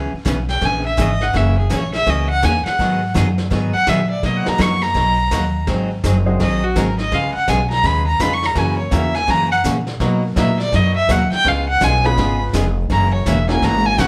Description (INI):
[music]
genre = country, western swing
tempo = 166 BPM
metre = 4/4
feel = swing 63% on 8ths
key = B major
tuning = A4 = 439 Hz
[part]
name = picked steel-string acoustic guitar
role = accompaniment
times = 0.0-14.1 s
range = B2 to G#4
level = -24 LUFS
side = equal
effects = none
[part]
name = upright bass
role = bass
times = 0.0-14.1 s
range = E1 to B2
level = -22 LUFS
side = equal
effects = none
[part]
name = vintage brush drum kit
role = drums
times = 0.3-14.1 s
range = brushed snare drum, hi-hat, kick drum, snare drum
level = -28 LUFS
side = equal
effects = none
[part]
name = warm fiddle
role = melody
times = 0.5-14.1 s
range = F#4 to C#6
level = -21 LUFS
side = equal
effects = none
[part]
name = clear upright piano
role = accompaniment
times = 4.4-14.0 s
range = G#3 to B4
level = -26 LUFS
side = equal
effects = none
[sound]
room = moderate large studio reverb, RT60 0.9 s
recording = band playing live in one room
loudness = -17 LUFS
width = mono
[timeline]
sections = 0.0-14.1 A section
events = fiddle solo 0.0-14.1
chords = 0.0 C#m7; 1.3 F#7; 2.8 G#m7; 4.2 Bmaj7; 5.7 G#7; 7.1 C#7; 8.6 F#7; 10.0 Bmaj7; 11.5 C#7; 12.9 F#7